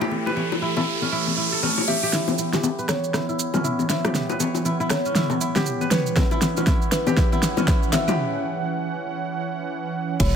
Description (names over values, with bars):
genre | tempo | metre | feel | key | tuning
afro house | 119 BPM | 4/4 | swing 60% on 16ths | E dorian | A4 = 444 Hz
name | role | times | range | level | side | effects
warm analog pad | sustained chords | 0.0-10.4 s | E3 to F#5 | -28 LUFS | right 3 dB | chorus, tremolo, sidechain pumping
kora | arpeggios | 0.0-10.4 s | C#4 to C#5 | -28 LUFS | equal | sidechain pumping, low-pass filter, tape echo
bongos | percussion | 0.0-8.2 s | none | -27 LUFS | left 6 dB | none
riser | sound effects | 0.0-2.1 s | none | -25 LUFS | right 2 dB | none
kalimba | melody | 1.9-10.4 s | B4 to E5 | -30 LUFS | left 1 dB | tape echo
deep house drum kit | drums | 2.1-10.3 s | crash cymbal, hi-hat, rim click, shaker, snare drum, toms | -25 LUFS | right 1 dB | overdrive
electronic kick drum | drums | 6.2-10.3 s | none | -21 LUFS | equal | overdrive
smooth synth bass | bass | 10.2-10.4 s | E1 | -21 LUFS | equal | sidechain pumping
room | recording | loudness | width
light reverb, small room ambience | none | -20 LUFS | side -7 dB against mid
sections
0.0-2.1 A section; 2.1-10.2 B section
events
riser 0.0-2.1; build-up 2.1-10.2; drum fill 2.1-8.2; filter sweep on kora 2.1-10.2; filter sweep on analog synth pad 2.1-10.2; break 8.2-10.2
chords
0.0 Em6; 2.1 Em69